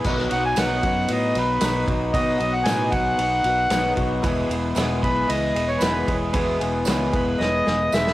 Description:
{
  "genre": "folk rock and heartland rock",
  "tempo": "114 BPM",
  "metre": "4/4",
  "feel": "straight",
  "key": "E major",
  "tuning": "A4 = 440 Hz",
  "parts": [
    { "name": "picked twelve-string acoustic guitar", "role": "accompaniment", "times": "0.0-8.1 s", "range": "E2 to G#4", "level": "-29 LUFS", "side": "left 2 dB", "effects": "none" },
    { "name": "electric guitar through a small old amp", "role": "riff", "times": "0.0-8.1 s", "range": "E2 to G#4", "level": "-26 LUFS", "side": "left 1 dB", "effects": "none" },
    { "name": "natural country drum kit", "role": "drums", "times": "0.0-8.1 s", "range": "crash cymbal, kick drum, ride cymbal, snare drum", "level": "-26 LUFS", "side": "equal", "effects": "cassette tape" },
    { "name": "clear upright piano", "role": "accompaniment", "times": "0.1-8.1 s", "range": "D#4 to C#5", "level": "-35 LUFS", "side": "right 2 dB", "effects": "none" },
    { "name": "pedal harmonium", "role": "sustained chords", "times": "0.1-8.1 s", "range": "D#4 to G#5", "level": "-34 LUFS", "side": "right 2 dB", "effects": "none" },
    { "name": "fingered electric bass", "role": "bass", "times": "0.1-8.1 s", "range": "E1 to B2", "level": "-29 LUFS", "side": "equal", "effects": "transformer saturation" },
    { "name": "accordion", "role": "melody", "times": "0.3-8.1 s", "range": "B4 to G#5", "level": "-24 LUFS", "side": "equal", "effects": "cassette tape, analog delay" },
    { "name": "tambourine", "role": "percussion", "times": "0.6-8.0 s", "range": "none", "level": "-36 LUFS", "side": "right 8 dB", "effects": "none" }
  ],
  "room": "moderate spring reverb, RT60 2.3 s",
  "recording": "home recording on cassette",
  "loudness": "-19 LUFS",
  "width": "side -16 dB against mid",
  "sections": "0.0-8.1 A section",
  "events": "drum fill 7.4-8.1",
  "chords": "0.0 B; 4.2 E",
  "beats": "| 0.05 0.57 1.09 1.62 | 2.14 2.67 3.19 3.71 | 4.24 4.77 5.29 5.82 | 6.34 6.87 7.40 7.92"
}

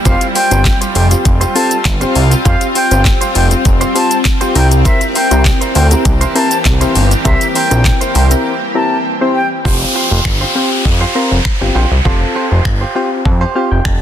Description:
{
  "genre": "dance-pop",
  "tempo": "100 BPM",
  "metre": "4/4",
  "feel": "straight",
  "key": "unclear",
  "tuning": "A4 = 442 Hz",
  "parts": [
    { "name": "shimmering ambient pad", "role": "sustained chords", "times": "0.0-9.6 s", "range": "E3 to G4", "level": "-19 LUFS", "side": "left 1 dB", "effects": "chorus, built-in reverb, sidechain pumping" },
    { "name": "bright concert flute", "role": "melody", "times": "0.1-9.5 s", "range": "E5 to A5", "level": "-18 LUFS", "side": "left 1 dB", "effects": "sidechain pumping, ping-pong delay" },
    { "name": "soft electric-piano-like synth keys", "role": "accompaniment", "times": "0.1-14.0 s", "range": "C4 to A5", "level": "-18 LUFS", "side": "left 2 dB", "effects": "chorus, sidechain pumping" },
    { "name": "direct-recorded clean electric guitar", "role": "riff", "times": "0.1-13.9 s", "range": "E4 to C5", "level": "-21 LUFS", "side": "right 5 dB", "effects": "lush chorus" },
    { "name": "fat analog bass", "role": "bass", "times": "0.1-14.0 s", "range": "F1 to F2", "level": "-13 LUFS", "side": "equal", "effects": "sidechain pumping" },
    { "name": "smooth R&B drum kit", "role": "drums", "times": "0.1-14.0 s", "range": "finger snaps, handclaps, hi-hat, kick drum, shaker, snare drum", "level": "-15 LUFS", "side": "equal", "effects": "soft clipping on snare" },
    { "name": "downlifter", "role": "sound effects", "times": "9.7-14.0 s", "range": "none", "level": "-18 LUFS", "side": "equal", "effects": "none" }
  ],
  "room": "light reverb, digital ambience",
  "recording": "dense, heavily limited modern master",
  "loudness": "-10 LUFS",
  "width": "side -10 dB against mid",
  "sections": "0.0-9.7 A section; 9.7-14.0 B section",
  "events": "drop 0.0-9.7; break 8.5-9.7; synth keys fill 13.3-14.0",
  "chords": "0.1 Fsus2; 4.6 C7; 9.7 Fsus2",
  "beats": "| 0.05 0.65 1.25 1.85 | 2.45 3.05 3.65 4.25 | 4.85 5.45 6.05 6.65 | 7.25 7.85 8.45 9.05 | 9.65 10.25 10.85 11.45 | 12.05 12.65 13.25 13.85"
}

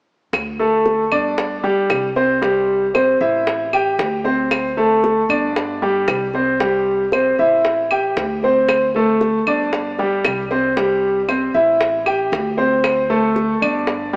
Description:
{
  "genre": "latin, Cuban son and guajira",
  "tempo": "115 BPM",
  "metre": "4/4",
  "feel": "straight",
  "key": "unclear",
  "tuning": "A4 = 441 Hz",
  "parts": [
    { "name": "upright bass", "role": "bass", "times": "0.3-14.2 s", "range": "G1 to D2", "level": "-30 LUFS", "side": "equal", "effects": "none" },
    { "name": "bongos", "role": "percussion", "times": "0.3-14.2 s", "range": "none", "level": "-25 LUFS", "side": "equal", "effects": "none" },
    { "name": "claves", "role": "percussion", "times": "0.3-13.9 s", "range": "none", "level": "-24 LUFS", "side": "equal", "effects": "none" },
    { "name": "warm concert grand piano", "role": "arpeggios", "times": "0.6-14.2 s", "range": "G3 to G5", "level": "-15 LUFS", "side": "equal", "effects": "none" }
  ],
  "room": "wet plate reverb, RT60 2.9 s",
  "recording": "heard from further back in the room, small speaker sound",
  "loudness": "-15 LUFS",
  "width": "side -32 dB against mid",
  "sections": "0.3-14.2 A section",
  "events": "none",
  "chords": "0.3 D5; 1.4 G5; 2.4 C; 3.5 A5; 4.5 D5; 5.6 G5; 6.6 C; 7.6 A5; 8.7 D5; 9.7 G5; 10.8 C; 11.8 A5; 12.8 D5",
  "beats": "| 0.34 0.86 1.38 1.90 | 2.43 2.95 3.47 3.99 | 4.52 5.04 5.56 6.08 | 6.60 7.12 7.64 8.16 | 8.69 9.21 9.73 10.25 | 10.77 11.29 11.80 12.32 | 12.84 13.36 13.88"
}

